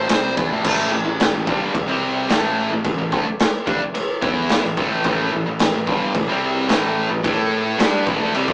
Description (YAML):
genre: hard rock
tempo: 109 BPM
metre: 4/4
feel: straight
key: A minor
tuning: A4 = 441 Hz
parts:
  - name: overdriven electric guitar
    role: riff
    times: 0.0-8.5 s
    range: G2 to A4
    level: -27 LUFS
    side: equal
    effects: none
  - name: sludgy distorted guitar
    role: riff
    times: 0.0-8.5 s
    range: G2 to A4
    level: -31 LUFS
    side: equal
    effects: none
  - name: modern bright picked electric bass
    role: bass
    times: 0.0-8.5 s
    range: G1 to A2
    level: -30 LUFS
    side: equal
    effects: none
  - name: raw garage drum kit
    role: drums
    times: 0.1-8.5 s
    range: crash cymbal, kick drum, ride cymbal, snare drum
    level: -24 LUFS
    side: equal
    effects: none
  - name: warm analog pad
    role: sustained chords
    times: 0.7-8.5 s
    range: A3 to B4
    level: -35 LUFS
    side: equal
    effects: none
  - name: high-gain distorted guitar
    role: riff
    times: 0.7-8.5 s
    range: G2 to A4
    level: -26 LUFS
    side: equal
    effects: distortion
room: moderate studio reverb, RT60 0.6 s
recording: rough rehearsal-room recording, tube saturation, small speaker sound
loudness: -20 LUFS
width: mono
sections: 0.6-8.5 A section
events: none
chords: 0.0 Am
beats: 0.10 | 0.65 1.20 1.74 2.29 | 2.84 3.39 3.94 4.49 | 5.04 5.59 6.14 6.69 | 7.24 7.79 8.34